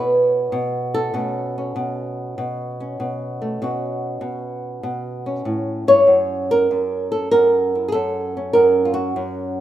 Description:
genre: solo jazz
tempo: 98 BPM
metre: 4/4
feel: swing 69% on 8ths, rubato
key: unclear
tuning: A4 = 440 Hz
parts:
  - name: flamenco guitar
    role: solo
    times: 0.0-9.6 s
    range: F#2 to C#5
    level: -18 LUFS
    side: right 1 dB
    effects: none
room: light reverb, small room ambience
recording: rough home demo mix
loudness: -18 LUFS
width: side -12 dB against mid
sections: 0.0-9.6 A section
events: none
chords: 0.0 Bsus2; 6.1 F#(#9)

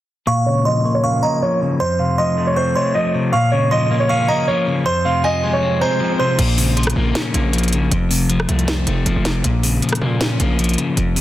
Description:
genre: hip hop, trap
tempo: 157 BPM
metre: 4/4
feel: half-time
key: Bb minor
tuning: A4 = 440 Hz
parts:
  - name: clear concert grand piano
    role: melody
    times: 0.3-6.3 s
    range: C5 to F5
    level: -19 LUFS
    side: right 2 dB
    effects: low-pass filter, tape echo
  - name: delicate synth tine bell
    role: second line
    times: 0.3-6.4 s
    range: Ab5 to Db6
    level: -24 LUFS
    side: right 2 dB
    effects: chorus, tape echo
  - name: electric guitar at the edge of break-up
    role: accompaniment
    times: 0.3-11.2 s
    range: F2 to Db4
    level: -18 LUFS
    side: left 2 dB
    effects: low-pass filter
  - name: swell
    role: sound effects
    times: 5.5-6.4 s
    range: none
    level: -29 LUFS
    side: left 1 dB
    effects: none
  - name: distorted 808-style bass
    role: bass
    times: 6.4-11.2 s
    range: F1 to Bb2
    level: -19 LUFS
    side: right 1 dB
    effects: distortion
  - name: trap drum kit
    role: drums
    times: 6.4-11.2 s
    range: crash cymbal, hi-hat, rim click, snare drum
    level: -23 LUFS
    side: equal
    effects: none
room: light reverb, digital ambience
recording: dense, heavily limited modern master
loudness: -15 LUFS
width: side -14 dB against mid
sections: 0.3-6.4 A section; 6.4-11.2 B section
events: filter sweep 0.3-6.4; swell 5.5-6.4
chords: 0.3 Bbm; 1.8 F; 3.3 Bbm; 4.9 Fm; 6.4 Bbm; 7.9 F; 9.4 Bbm

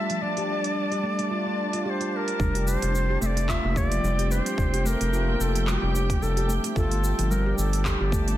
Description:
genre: organic downtempo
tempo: 110 BPM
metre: 4/4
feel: swing 57% on 16ths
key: unclear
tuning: A4 = 442 Hz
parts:
  - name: bright Native American-style cedar flute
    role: melody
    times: 0.0-8.4 s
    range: G4 to E5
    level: -30 LUFS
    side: equal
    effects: tape echo
  - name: muted studio string section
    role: sustained chords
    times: 0.0-8.4 s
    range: F3 to A5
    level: -32 LUFS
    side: equal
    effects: sidechain pumping
  - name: bronze singing bowl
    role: texture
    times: 0.0-8.4 s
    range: G3 to G4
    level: -42 LUFS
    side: right 9 dB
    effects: none
  - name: handpan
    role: arpeggios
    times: 0.1-8.4 s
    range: F3 to G4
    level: -30 LUFS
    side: equal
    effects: tape echo
  - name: organic electronic drum kit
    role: drums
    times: 0.1-8.4 s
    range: handclaps, hi-hat, shaker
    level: -34 LUFS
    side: right 1 dB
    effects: low-pass filter on cymbals, low-pass filter on hats, low-pass filter on perc, low-pass filter on snare, low-pass filter on room
  - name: round analog bass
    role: bass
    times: 2.4-8.4 s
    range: F1 to G1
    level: -25 LUFS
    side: equal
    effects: sidechain pumping
  - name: electronic kick drum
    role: drums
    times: 2.4-8.2 s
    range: none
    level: -28 LUFS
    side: equal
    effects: none
room: light reverb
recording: dense, heavily limited modern master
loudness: -22 LUFS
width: side -13 dB against mid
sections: 0.0-2.4 A section; 2.4-8.4 B section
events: none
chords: 0.0 Gsus2; 2.4 Fsus2; 6.8 Gsus2

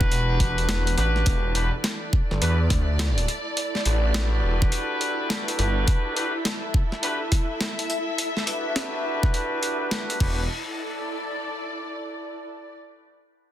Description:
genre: glitch hop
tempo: 104 BPM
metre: 4/4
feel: swing 64% on 16ths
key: E minor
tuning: A4 = 440 Hz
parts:
  - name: warbly tape-like pad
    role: sustained chords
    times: 0.0-1.3 s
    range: E3 to F#5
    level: -40 LUFS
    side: left 1 dB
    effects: none
  - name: warm horn section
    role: stabs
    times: 0.0-10.4 s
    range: D4 to B4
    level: -29 LUFS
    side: equal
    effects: sidechain pumping, low-pass filter, dub echo
  - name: phased detuned saw bass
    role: bass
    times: 0.0-5.9, 10.2-10.5 s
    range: E1 to E2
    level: -23 LUFS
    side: equal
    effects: phaser
  - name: boom bap sampler-style drum kit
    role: drums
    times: 0.0-10.4 s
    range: crash cymbal, hi-hat, snare drum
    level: -28 LUFS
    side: equal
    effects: none
  - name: electronic kick drum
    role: drums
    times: 0.0-10.4 s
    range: none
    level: -22 LUFS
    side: equal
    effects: overdrive
  - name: rubbery square bass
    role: bass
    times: 1.0-1.2 s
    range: A1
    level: -22 LUFS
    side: equal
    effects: tube saturation
  - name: dark studio string section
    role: texture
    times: 1.2-12.8 s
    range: E4 to E5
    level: -30 LUFS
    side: equal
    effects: sidechain pumping
room: light reverb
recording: dense, heavily limited modern master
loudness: -22 LUFS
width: side -12 dB against mid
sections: 0.0-1.3 A section; 1.3-10.5 B section; 10.5-12.8 C section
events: drop 0.0-1.3; kick drops out 0.7-1.3; filter sweep on horn section 1.3-10.5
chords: 0.0 Em7; 10.5 E7sus4

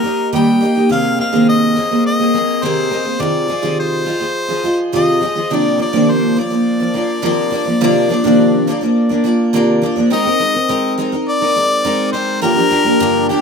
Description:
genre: pop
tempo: 104 BPM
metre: 4/4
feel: straight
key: unclear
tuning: A4 = 440 Hz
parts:
  - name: clear harmonica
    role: melody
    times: 0.0-13.4 s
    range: G4 to G5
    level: -18 LUFS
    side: left 3 dB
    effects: tape echo
  - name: picked steel-string acoustic guitar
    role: accompaniment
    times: 0.0-13.4 s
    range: G2 to Eb5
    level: -14 LUFS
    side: equal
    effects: double-tracked left and right
room: wet small room reverb, RT60 0.5 s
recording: rough home demo mix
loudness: -12 LUFS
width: side -5 dB against mid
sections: 0.0-10.1 A section; 10.1-13.4 B section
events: none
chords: 0.0 Eb; 0.9 Abadd9; 3.2 Fm; 5.5 Bbadd9; 10.1 Abadd9; 12.4 Gm7

